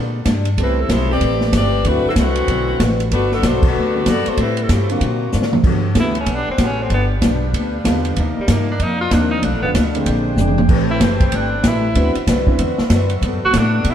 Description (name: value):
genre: jazz, big band swing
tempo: 190 BPM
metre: 4/4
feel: swing 63% on 8ths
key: G major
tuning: A4 = 444 Hz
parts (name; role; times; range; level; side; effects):
- picked acoustic archtop guitar; accompaniment; 0.0-13.9 s; G2 to B4; -24 LUFS; left 2 dB; none
- upright bass; bass; 0.0-13.9 s; F1 to B2; -19 LUFS; equal; none
- open jazz drum kit; drums; 0.3-13.9 s; crash cymbal, hi-hat, kick drum, ride cymbal, snare drum, toms; -19 LUFS; right 1 dB; none
- clear saxophone section; melody; 0.6-5.5 s; C3 to D5; -20 LUFS; left 2 dB; none
- warm baby grand piano; accompaniment; 0.6-12.6 s; D3 to B4; -25 LUFS; right 1 dB; none
- bright saxophone section; sustained chords; 5.6-13.9 s; Eb3 to G5; -29 LUFS; equal; none
- clear tenor saxophone; melody; 6.0-13.9 s; G3 to F#4; -22 LUFS; right 1 dB; none
room: moderate echo chamber reverb, RT60 1.4 s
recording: heard from further back in the room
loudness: -14 LUFS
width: side -9 dB against mid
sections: 0.0-5.6 A section; 5.6-13.9 B section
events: band accent 3.6; drum fill 5.3-5.6, 10.4-10.7; tenor saxophone solo 5.6-13.9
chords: 0.0 Bb6; 0.6 Am9; 1.8 D13; 3.1 Gmaj9; 4.4 Am7; 5.0 D7alt; 5.6 Gmaj9; 6.9 G7; 8.2 Cm11; 9.4 Bm7b5; 10.1 Bb13; 10.7 Am9; 12.0 D13; 13.2 Gmaj9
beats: 0.27 | 0.58 0.90 1.22 1.53 | 1.85 2.17 2.48 2.80 | 3.11 3.43 3.75 4.06 | 4.38 4.69 5.01 5.33 | 5.64 5.96 6.27 6.59 | 6.91 7.22 7.54 7.85 | 8.17 8.48 8.80 9.12 | 9.43 9.75 10.06 10.38 | 10.69 11.01 11.33 11.64 | 11.96 12.28 12.59 12.91 | 13.22 13.54 13.86